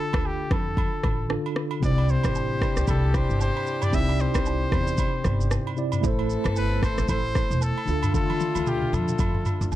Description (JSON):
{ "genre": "afrobeats", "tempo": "114 BPM", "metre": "4/4", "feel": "swing 58% on 16ths", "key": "C major", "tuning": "A4 = 442 Hz", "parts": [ { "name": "clear trumpet", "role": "melody", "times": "0.0-9.7 s", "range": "G4 to E5", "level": "-30 LUFS", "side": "equal", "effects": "ping-pong delay" }, { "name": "tine electric piano", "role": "accompaniment", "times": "0.0-9.8 s", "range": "C3 to D5", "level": "-29 LUFS", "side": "right 2 dB", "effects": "fast stereo tremolo" }, { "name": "upright bass", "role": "bass", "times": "0.1-9.8 s", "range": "E1 to F2", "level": "-26 LUFS", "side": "equal", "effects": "none" }, { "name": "afro-pop drum kit", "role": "drums", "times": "0.1-9.8 s", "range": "kick drum, rim click, shaker, toms", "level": "-26 LUFS", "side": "equal", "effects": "none" }, { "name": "agogo bells and woodblock", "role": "percussion", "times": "0.1-9.8 s", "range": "none", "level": "-38 LUFS", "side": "right 10 dB", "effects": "none" }, { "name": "warm horn section", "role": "second line", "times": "1.8-9.8 s", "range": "D3 to A4", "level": "-32 LUFS", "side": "left 5 dB", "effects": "none" } ], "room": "light reverb", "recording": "dark, warm production", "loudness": "-22 LUFS", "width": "side -14 dB against mid", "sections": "0.0-9.8 A section", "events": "break 0.0-1.8; drum fill 8.1-9.8", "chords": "0.0 Dm; 1.8 Cadd9; 6.0 Am; 7.9 Dm" }